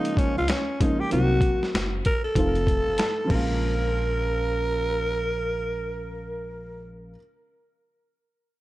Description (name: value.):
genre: hip hop, jazz-hop.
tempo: 96 BPM.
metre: 4/4.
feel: swing 62% on 16ths.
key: Bb minor.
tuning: A4 = 440 Hz.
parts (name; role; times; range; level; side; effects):
growling alto saxophone; melody; 0.0-6.9 s; Db4 to Bb4; -27 LUFS; right 1 dB; analog delay.
warm upright piano; accompaniment; 0.0-7.2 s; Db3 to A5; -29 LUFS; right 1 dB; none.
boom bap sampler-style drum kit; drums; 0.0-3.5 s; crash cymbal, hi-hat, kick drum, snare drum; -26 LUFS; equal; none.
upright bass; bass; 0.4-7.1 s; F1 to Db2; -29 LUFS; equal; none.
room: moderate plate reverb, RT60 1.7 s, small room reverb.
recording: dark, warm production.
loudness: -22 LUFS.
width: side -16 dB against mid.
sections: 0.0-3.6 A section; 3.6-6.1 B section.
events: upright piano fill 2.7-3.6.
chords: 0.0 Bbm7; 1.1 Cm7b5; 2.4 F7; 3.3 Bbm7.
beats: 0.48 | 1.11 1.74 2.36 2.98 | 3.61 4.24 4.86 5.49.